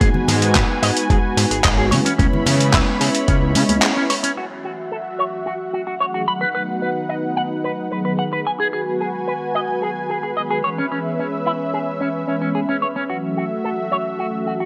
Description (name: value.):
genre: nu-disco, nu disco.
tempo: 110 BPM.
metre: 4/4.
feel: straight.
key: F# dorian.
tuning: A4 = 440 Hz.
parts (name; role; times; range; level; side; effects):
mellow synth brass; accompaniment; 0.0-14.7 s; D#3 to D#5; -27 LUFS; equal; chorus, sidechain pumping, delay.
lush unison pad; sustained chords; 0.0-14.7 s; A3 to B5; -27 LUFS; equal; chorus, sidechain pumping.
electric guitar with an envelope filter; riff; 0.0-14.7 s; C#4 to B5; -26 LUFS; equal; subtle chorus, low-pass filter, delay.
fat analog bass; bass; 0.0-3.8 s; G#1 to C#3; -22 LUFS; equal; none.
dusty soul sampler-style drum kit; drums; 0.0-4.5 s; crash cymbal, handclaps, hi-hat; -23 LUFS; equal; overdrive, low-pass filter on hats, low-pass filter on snare, low-pass filter on cymbals, low-pass filter on room, gated reverb.
electronic kick drum; drums; 0.0-3.4 s; none; -21 LUFS; equal; overdrive.
congas; percussion; 0.0-3.8 s; none; -28 LUFS; equal; none.
room: moderate plate reverb, RT60 2.4 s.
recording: bright 1980s-style digital production.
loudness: -20 LUFS.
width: mono.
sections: 0.0-4.4 A section; 4.4-14.7 B section.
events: filter sweep on analog polysynth 0.0-4.4.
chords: 0.0 G#m7; 1.9 C#m7; 4.4 F#m7; 6.3 B7; 8.5 G#m7; 10.6 C#m7; 13.1 F#m7.